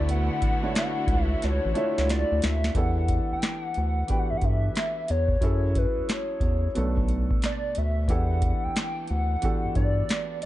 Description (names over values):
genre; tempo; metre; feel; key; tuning
R&B, neo-soul; 90 BPM; 4/4; swing 63% on 16ths; unclear; A4 = 439 Hz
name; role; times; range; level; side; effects
hollow square lead; melody; 0.0-10.5 s; B4 to G5; -30 LUFS; left 1 dB; chorus
clear grand piano; accompaniment; 0.0-10.5 s; B2 to E5; -32 LUFS; right 2 dB; none
clear studio string section; sustained chords; 0.0-2.7 s; B3 to F#4; -36 LUFS; left 2 dB; none
round analog bass; bass; 0.0-10.0 s; A1 to G2; -25 LUFS; equal; none
booming analog drum machine; drums; 0.1-10.5 s; handclaps, hi-hat, kick drum, snare drum; -27 LUFS; equal; none
room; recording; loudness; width
digital ambience; dark, warm production, nothing above 10.5 kHz; -23 LUFS; side -15 dB against mid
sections
0.0-2.8 A section; 2.8-10.5 B section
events
drum fill 1.4-2.8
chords
0.0 Dmaj9; 2.8 Em11; 5.4 F#m9; 6.8 Bm7; 8.1 Em11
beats
| 0.09 0.75 1.42 2.08 | 2.75 3.42 4.08 4.75 | 5.42 6.08 6.75 7.42 | 8.09 8.75 9.42 10.09